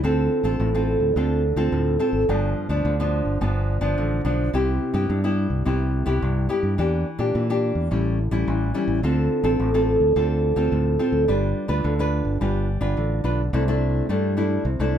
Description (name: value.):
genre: samba and choro.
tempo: 107 BPM.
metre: 4/4.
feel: straight.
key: C major.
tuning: A4 = 439 Hz.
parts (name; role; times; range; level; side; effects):
nylon-string guitar; accompaniment; 0.0-15.0 s; G2 to B4; -22 LUFS; equal; none.
fingered electric bass; bass; 0.0-15.0 s; G1 to Bb2; -23 LUFS; equal; none.
room: light reverb.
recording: none.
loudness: -20 LUFS.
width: side -9 dB against mid.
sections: 0.0-13.5 A section; 13.5-15.0 B section.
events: none.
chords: 0.0 Dm7; 2.3 G7; 4.5 Cmaj7; 6.8 Em7b5; 7.9 A7; 9.0 Dm7; 11.3 G7; 13.5 C69.